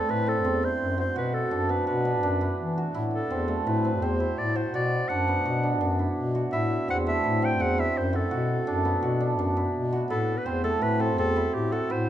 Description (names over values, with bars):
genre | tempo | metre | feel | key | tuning
contemporary instrumental, chamber music in an uneven meter | 168 BPM | 5/4 | straight | A dorian | A4 = 439 Hz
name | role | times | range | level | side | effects
warm clarinet | melody | 0.0-12.1 s | G4 to G5 | -30 LUFS | equal | none
cimbalom | arpeggios | 0.0-12.1 s | A3 to F#4 | -27 LUFS | right 2 dB | none
mellow bass clarinet | bass | 0.1-12.1 s | E2 to E3 | -28 LUFS | left 2 dB | none
room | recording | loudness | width
moderate recital hall reverb, RT60 1.7 s | dark, warm production | -24 LUFS | side -11 dB against mid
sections
0.0-12.1 A section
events
none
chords
0.0 Am; 1.2 Bm7; 2.9 Amadd9; 4.7 Bm; 6.5 Am; 8.3 Bm7; 10.1 Am